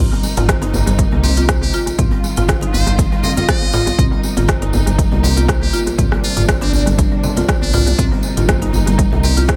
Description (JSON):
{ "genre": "afro house", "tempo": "120 BPM", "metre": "4/4", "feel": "swing 54% on 16ths", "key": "C minor", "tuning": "A4 = 440 Hz", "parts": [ { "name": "dark studio string section", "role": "sustained chords", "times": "0.0-9.6 s", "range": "C3 to F4", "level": "-28 LUFS", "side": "equal", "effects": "vintage 12-bit sampler grit, sidechain pumping" }, { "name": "buzzing marimba with medium mallets", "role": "arpeggios", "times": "0.0-9.6 s", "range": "G3 to C5", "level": "-25 LUFS", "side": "equal", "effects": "sidechain pumping, analog delay" }, { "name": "dark detuned saw bass", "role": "bass", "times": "0.0-9.6 s", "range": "G1 to C2", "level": "-20 LUFS", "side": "equal", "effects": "sidechain pumping" }, { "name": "djembe", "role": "percussion", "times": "0.1-9.5 s", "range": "none", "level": "-27 LUFS", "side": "equal", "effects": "analog delay" }, { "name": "congas", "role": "percussion", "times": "0.2-9.6 s", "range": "none", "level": "-26 LUFS", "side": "equal", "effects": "none" }, { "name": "tambourine", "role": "percussion", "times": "0.2-9.6 s", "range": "none", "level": "-34 LUFS", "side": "equal", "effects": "none" }, { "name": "afro-pop drum kit", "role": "drums", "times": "0.4-9.6 s", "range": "hi-hat, rim click, toms", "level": "-24 LUFS", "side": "equal", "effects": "analog delay" }, { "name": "electronic kick drum", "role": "drums", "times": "0.5-9.6 s", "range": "none", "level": "-20 LUFS", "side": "equal", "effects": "overdrive" }, { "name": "trumpet with metal mute", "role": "melody", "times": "1.2-9.4 s", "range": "C4 to Eb5", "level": "-26 LUFS", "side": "equal", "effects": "analog delay" } ], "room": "little or no reverb", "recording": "echo-heavy mix", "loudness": "-15 LUFS", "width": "mono", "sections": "0.0-9.6 A section", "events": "none", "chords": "0.0 Cm7; 2.0 F5; 4.0 Cm7; 6.0 Bbadd9; 8.0 Cm7" }